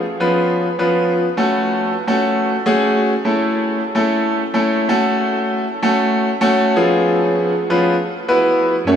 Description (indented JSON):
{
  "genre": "dance-pop",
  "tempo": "128 BPM",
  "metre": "4/4",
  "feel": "straight",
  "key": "F# minor",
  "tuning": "A4 = 441 Hz",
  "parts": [
    { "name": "bright grand piano", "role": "accompaniment", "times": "0.2-9.0 s", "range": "E#3 to C#5", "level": "-14 LUFS", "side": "equal", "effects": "none" },
    { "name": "mellow bass clarinet", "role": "bass", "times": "8.9-9.0 s", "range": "F#2", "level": "-13 LUFS", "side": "right 3 dB", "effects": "none" }
  ],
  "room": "wet huge ambient reverb, RT60 7.9 s",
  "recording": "dreamy mix soaked in reverb, small room ambience",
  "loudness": "-14 LUFS",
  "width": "side -8 dB against mid",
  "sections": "0.0-8.9 A section",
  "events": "build-up 0.0-8.9",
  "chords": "0.0 C#7/E#; 1.4 F#m; 3.2 A; 4.9 F#m; 6.8 C#7/E#; 7.9 Esus2"
}